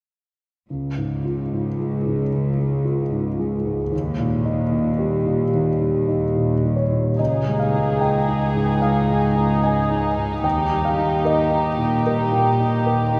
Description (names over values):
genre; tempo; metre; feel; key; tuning
cinematic; 74 BPM; 4/4; rubato; Db lydian; A4 = 440 Hz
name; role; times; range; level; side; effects
warm grand piano; accompaniment; 0.7-13.2 s; Db2 to Ab5; -22 LUFS; equal; none
rich symphonic cello section; bass; 0.7-13.2 s; Db2 to Eb2; -28 LUFS; equal; none
warm symphonic violin section; second line; 7.2-13.2 s; Eb4 to Ab4; -25 LUFS; equal; none
room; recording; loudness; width
wet cathedral reverb, RT60 4.7 s; recorded in a church or concert hall; -21 LUFS; mono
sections
0.7-7.2 A section; 7.2-13.2 B section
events
none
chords
0.7 Db; 3.9 Eb; 7.2 Dbadd9; 10.4 Eb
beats
| 0.71 1.53 2.33 3.13 | 3.92 4.72 5.53 6.35 | 7.19 8.01 8.83 9.64 | 10.44 11.25 12.06 12.87